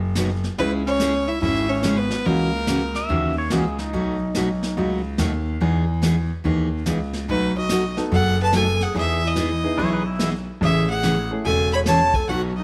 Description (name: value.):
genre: country, western swing.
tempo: 144 BPM.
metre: 4/4.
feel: swing 67% on 8ths.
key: E major.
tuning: A4 = 440 Hz.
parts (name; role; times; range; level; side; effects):
clear grand piano; bass; 0.0-12.6 s; E1 to E2; -26 LUFS; equal; none.
picked steel-string acoustic guitar; accompaniment; 0.2-12.5 s; B2 to G#4; -26 LUFS; equal; none.
vintage brush drum kit; drums; 0.2-12.6 s; brushed snare drum, hi-hat, kick drum, snare drum; -32 LUFS; equal; none.
clear fiddle; melody; 0.6-3.1, 7.3-12.6 s; A#4 to B5; -26 LUFS; equal; none.
warm clarinet; second line; 0.6-3.1, 7.3-12.6 s; A#3 to C#5; -29 LUFS; equal; none.
pedal steel guitar; second line; 3.0-5.0, 9.8-10.3 s; D#4 to E5; -30 LUFS; equal; none.
clear upright piano; accompaniment; 8.0-11.4 s; A3 to A4; -31 LUFS; equal; none.
room: light reverb.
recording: none.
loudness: -21 LUFS.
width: mono.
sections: 0.0-12.6 A section.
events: none.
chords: 0.0 B; 0.6 C#m; 2.3 F#7/C#; 3.9 B7; 5.6 Emaj7; 7.3 B7; 8.9 Emaj7; 10.6 Amaj7.